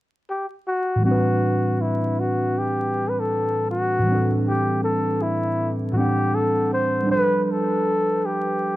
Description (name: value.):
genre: hip hop.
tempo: 79 BPM.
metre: 4/4.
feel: swing 65% on 16ths.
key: A dorian.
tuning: A4 = 440 Hz.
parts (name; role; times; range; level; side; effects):
breathy flugelhorn; melody; 0.3-8.8 s; E4 to C5; -22 LUFS; left 1 dB; low-pass filter.
muted felt-like synth keys; accompaniment; 1.0-8.8 s; A2 to F#5; -22 LUFS; right 1 dB; chorus, low-pass filter.
room: moderate studio reverb, RT60 0.5 s.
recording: vinyl crackle.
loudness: -20 LUFS.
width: side -16 dB against mid.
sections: 0.0-1.0 A section; 1.0-8.8 B section.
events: none.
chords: 0.0 N.C.; 1.0 Am11; 7.1 G7.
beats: 0.27 | 1.02 1.78 2.54 3.30 | 4.06 4.82 5.58 6.34 | 7.10 7.86 8.62.